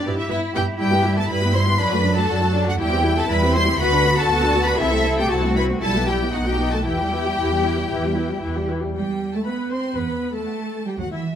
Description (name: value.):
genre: quick classical-period movement for string orchestra.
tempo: 118 BPM.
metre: 4/4.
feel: rubato.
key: E minor.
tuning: A4 = 438 Hz.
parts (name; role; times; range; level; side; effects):
rich studio violin section; melody; 0.0-10.9 s; D5 to C6; -23 LUFS; left 2 dB; none.
rich studio violin section; second line; 0.0-11.4 s; D4 to C6; -26 LUFS; left 3 dB; none.
rich studio cello section; bass; 0.0-11.4 s; E3 to A4; -26 LUFS; equal; none.
rich studio viola section; accompaniment; 0.1-11.2 s; E3 to C5; -25 LUFS; left 1 dB; none.
warm studio double bass section; bass; 0.1-11.4 s; B1 to G2; -23 LUFS; right 2 dB; none.
room: moderate recital hall reverb, RT60 1.4 s.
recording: close, detailed microphones.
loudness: -18 LUFS.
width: side -9 dB against mid.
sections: 0.0-9.0 A section; 9.0-11.4 A section.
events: none.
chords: 0.0 Em/G; 1.8 D/F#; 2.8 C/E; 3.8 Bm/D; 4.8 Am/C; 5.8 Em/B; 6.3 B7; 6.9 Em; 10.0 Emadd11.